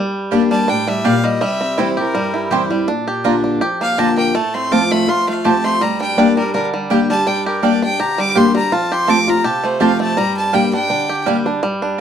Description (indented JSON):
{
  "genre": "bluegrass",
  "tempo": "164 BPM",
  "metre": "4/4",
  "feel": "swing 53% on 8ths",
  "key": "G dorian",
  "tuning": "A4 = 440 Hz",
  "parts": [
    { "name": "picked steel-string acoustic guitar", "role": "accompaniment", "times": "0.0-12.0 s", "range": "F2 to G4", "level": "-18 LUFS", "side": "left 3 dB", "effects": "none" },
    { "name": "bluegrass banjo", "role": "arpeggios", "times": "0.0-12.0 s", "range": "G3 to G4", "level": "-20 LUFS", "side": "right 2 dB", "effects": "none" },
    { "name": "mandolin", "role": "stabs", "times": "0.3-12.0 s", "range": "Bb3 to Bb5", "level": "-19 LUFS", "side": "right 8 dB", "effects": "none" },
    { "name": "rich fiddle", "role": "melody", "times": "0.5-11.2 s", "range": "Bb4 to D6", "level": "-19 LUFS", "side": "left 1 dB", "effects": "none" }
  ],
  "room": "moderate small room reverb, RT60 0.5 s",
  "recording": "dark, warm production",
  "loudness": "-14 LUFS",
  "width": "side -8 dB against mid",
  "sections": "0.0-11.6 A section",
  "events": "fiddle solo 0.0-11.6",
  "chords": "0.0 Gm; 1.4 C; 2.9 Bb; 4.3 F/A; 5.8 Gm; 8.7 F; 10.2 Gm"
}